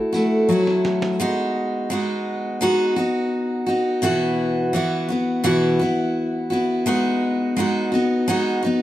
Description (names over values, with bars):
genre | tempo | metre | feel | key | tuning
acoustic pop | 85 BPM | 4/4 | straight | unclear | A4 = 439 Hz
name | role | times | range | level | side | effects
picked steel-string acoustic guitar | accompaniment | 0.0-8.8 s | B2 to F#4 | -18 LUFS | equal | none
electronic tambourine and snare drum | drums | 0.1-1.2 s | none | -31 LUFS | right 2 dB | none
room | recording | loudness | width
moderate studio ambience, RT60 0.5 s | none | -18 LUFS | side -13 dB against mid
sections
0.0-1.2 A section; 1.2-8.8 B section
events
drum fill 0.5-1.2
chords
0.0 B7sus4 (rootless); 1.2 G#m7; 4.0 Bsus4; 6.9 G#m7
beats
0.49 | 1.20 1.91 2.62 3.33 | 4.03 4.74 5.45 6.16 | 6.87 7.57 8.28